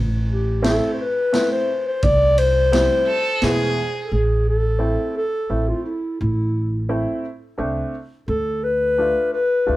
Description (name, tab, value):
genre	klezmer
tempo	86 BPM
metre	3/4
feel	straight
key	A harmonic minor from 4.1 s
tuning	A4 = 441 Hz
part	upright bass	bass	0.0-9.8 s	A1 to E2	-22 LUFS	equal	none
part	dark clarinet	melody	0.3-9.8 s	E4 to D5	-20 LUFS	left 1 dB	none
part	clear upright piano	accompaniment	0.6-9.8 s	B2 to F4	-24 LUFS	right 1 dB	none
part	street-band drum kit	drums	0.6-3.6 s	kick drum, ride cymbal, snare drum	-25 LUFS	right 1 dB	none
part	rich violin	second line	3.1-4.1 s	G#4 to A4	-23 LUFS	right 3 dB	none
room	moderate small room reverb, RT60 0.5 s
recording	heard from further back in the room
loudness	-18 LUFS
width	side -16 dB against mid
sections	0.0-4.1 A section; 4.1-9.8 B section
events	none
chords	0.0 Am; 2.0 C; 3.4 E; 4.1 Am; 8.3 Dm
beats	0.64 1.33 | 2.03 2.72 3.42 | 4.11 4.81 5.50 | 6.20 6.90 7.59 | 8.29 8.98 9.68